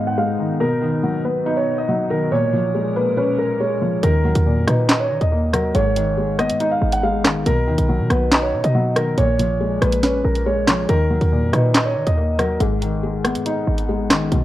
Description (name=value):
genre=hip hop, drill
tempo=140 BPM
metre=4/4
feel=half-time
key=Eb minor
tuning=A4 = 441 Hz
part: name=dark concert grand piano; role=melody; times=0.0-12.6 s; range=Bb4 to Gb5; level=-22 LUFS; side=right 1 dB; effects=low-pass filter
part: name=felt-muted upright piano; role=accompaniment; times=0.0-14.4 s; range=Ab2 to Eb5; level=-21 LUFS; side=left 2 dB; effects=low-pass filter
part: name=glassy FM pad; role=sustained chords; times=0.0-4.0 s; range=Ab2 to Bb4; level=-28 LUFS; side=equal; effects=ensemble chorus, built-in reverb, low-pass filter
part: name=downlifter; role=sound effects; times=0.0-0.6 s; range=none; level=barely audible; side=none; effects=none
part: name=short 808-style bass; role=bass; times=4.0-14.4 s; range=Ab1 to Eb3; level=-21 LUFS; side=equal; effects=none
part: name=drill drum kit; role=drums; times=4.0-14.4 s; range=handclaps, hi-hat, rim click, snare drum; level=-20 LUFS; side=equal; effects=none
room=light reverb, digital ambience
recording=worn, warbling old tape, cassette tape, warbly pitch drift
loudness=-16 LUFS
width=side -14 dB against mid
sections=0.0-4.0 A section; 4.0-14.4 B section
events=break 12.6-14.4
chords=0.0 Abm; 0.6 B; 2.3 Bbm7; 4.0 Ebm; 5.7 Abm; 7.5 B; 9.2 Bbm7; 10.9 Ebm; 12.6 Abm